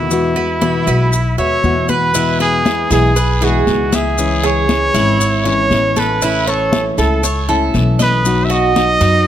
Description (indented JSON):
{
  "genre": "latin, Cuban son and guajira",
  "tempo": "118 BPM",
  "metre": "4/4",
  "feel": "straight",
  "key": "E major",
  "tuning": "A4 = 438 Hz",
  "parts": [
    { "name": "clear trumpet", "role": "melody", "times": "0.0-9.3 s", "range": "E4 to E5", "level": "-17 LUFS", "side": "right 1 dB", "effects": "none" },
    { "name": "nylon-string guitar", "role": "accompaniment", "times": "0.0-9.3 s", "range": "B2 to F#4", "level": "-19 LUFS", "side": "left 4 dB", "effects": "none" },
    { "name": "Cuban tres", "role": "arpeggios", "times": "0.0-9.3 s", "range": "D#4 to E5", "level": "-19 LUFS", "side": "right 5 dB", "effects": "none" },
    { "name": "upright bass", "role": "bass", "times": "0.0-9.3 s", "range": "G#1 to F#2", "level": "-18 LUFS", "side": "equal", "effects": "none" },
    { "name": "congas", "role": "percussion", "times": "0.1-9.3 s", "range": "none", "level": "-21 LUFS", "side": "left 4 dB", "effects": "none" },
    { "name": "maracas", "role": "percussion", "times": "0.1-9.3 s", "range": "none", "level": "-25 LUFS", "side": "left 5 dB", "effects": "none" },
    { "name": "guiro", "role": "percussion", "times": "2.1-9.3 s", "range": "none", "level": "-29 LUFS", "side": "left 5 dB", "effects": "none" }
  ],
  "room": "light reverb",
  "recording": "close, detailed microphones",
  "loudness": "-12 LUFS",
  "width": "side -10 dB against mid",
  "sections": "0.0-2.1 A section; 2.1-9.3 B section",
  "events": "none",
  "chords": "0.1 Eadd9; 2.1 E; 4.2 C#m; 6.2 A; 8.3 B"
}